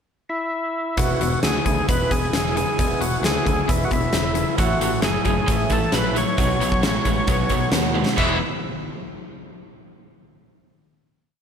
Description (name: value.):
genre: classic rock.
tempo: 133 BPM.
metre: 4/4.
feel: straight.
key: E major.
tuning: A4 = 440 Hz.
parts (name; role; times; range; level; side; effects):
overdriven tonewheel organ; melody; 0.3-8.4 s; E4 to E5; -25 LUFS; left 1 dB; chorus vibrato, slapback echo, digital delay.
picked twelve-string acoustic guitar; accompaniment; 1.0-8.4 s; E2 to F#4; -30 LUFS; right 6 dB; slapback echo.
crunchy overdriven guitar; riff; 1.0-8.4 s; E2 to G#3; -26 LUFS; left 9 dB; none.
picked electric bass; bass; 1.0-8.4 s; E1 to D#2; -27 LUFS; right 1 dB; none.
huge arena drum kit; drums; 1.0-8.3 s; hi-hat, kick drum, snare drum, splash cymbal, toms; -23 LUFS; equal; none.
tight distorted guitar; riff; 4.6-8.4 s; A2 to E4; -27 LUFS; right 10 dB; distortion.
room: moderate lush hall reverb, RT60 2.1 s.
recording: big arena sound.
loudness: -18 LUFS.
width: side -7 dB against mid.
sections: 0.0-1.0 pickup bar; 1.0-8.2 verse; 8.2-10.0 final chord.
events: drum fill 8.0.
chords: 0.0 N.C.; 1.0 E; 4.6 A; 6.4 Bsus2; 8.2 E.